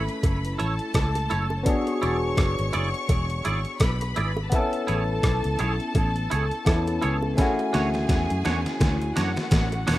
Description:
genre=lovers rock reggae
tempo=84 BPM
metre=4/4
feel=swing 58% on 16ths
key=A major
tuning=A4 = 440 Hz
part: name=rich studio string section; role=second line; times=0.0-10.0 s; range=F#4 to C#6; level=-32 LUFS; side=left 1 dB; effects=none
part: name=barky tine electric piano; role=accompaniment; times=0.0-10.0 s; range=A3 to A4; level=-28 LUFS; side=left 2 dB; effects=phaser
part: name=twangy electric guitar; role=stabs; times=0.0-10.0 s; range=D4 to D5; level=-32 LUFS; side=right 4 dB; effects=ensemble chorus, dub echo
part: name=vintage muted fingered electric bass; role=bass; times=0.0-10.0 s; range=E1 to F#2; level=-26 LUFS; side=equal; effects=none
part: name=gated 80s digital drum machine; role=drums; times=0.1-10.0 s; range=hi-hat, kick drum, rim click, snare drum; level=-24 LUFS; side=equal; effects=gated reverb, gated reverb snare, overdrive
part: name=bongos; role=percussion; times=0.2-10.0 s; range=none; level=-37 LUFS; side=right 3 dB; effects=none
room=little or no reverb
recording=rough home demo mix, lossy compression artefacts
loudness=-22 LUFS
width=side -15 dB against mid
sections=0.0-10.0 A section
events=drum fill 7.4-10.0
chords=0.0 F#m7; 1.7 E7; 4.5 Amaj7; 7.4 Dmaj7

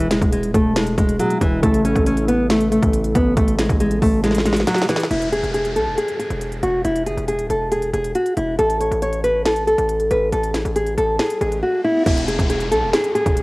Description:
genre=hip hop, trap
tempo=138 BPM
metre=4/4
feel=half-time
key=E major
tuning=A4 = 436 Hz
part: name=nylon-string guitar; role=melody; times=0.0-13.4 s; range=E3 to C#5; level=-18 LUFS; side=equal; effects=cassette tape
part: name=warbly lo-fi synth keys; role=accompaniment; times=0.0-5.1 s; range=B2 to A4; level=-26 LUFS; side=right 1 dB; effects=chorus, cassette tape
part: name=distorted 808-style bass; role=bass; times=0.0-13.4 s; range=D#1 to B1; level=-24 LUFS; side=equal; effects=distortion
part: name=trap drum kit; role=drums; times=0.0-13.4 s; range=crash cymbal, hi-hat, kick drum, snare drum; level=-21 LUFS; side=equal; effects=none
part: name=downlifter and riser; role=sound effects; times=5.1-13.4 s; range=none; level=-31 LUFS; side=equal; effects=none
room=little or no reverb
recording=home recording on cassette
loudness=-16 LUFS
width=side -23 dB against mid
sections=0.0-5.1 A section; 5.1-12.1 B section; 12.1-13.4 C section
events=drum fill 4.2-5.1; riser 11.3-12.1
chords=0.0 E; 1.6 A; 5.1 E; 8.6 Amaj7(no3); 12.1 E

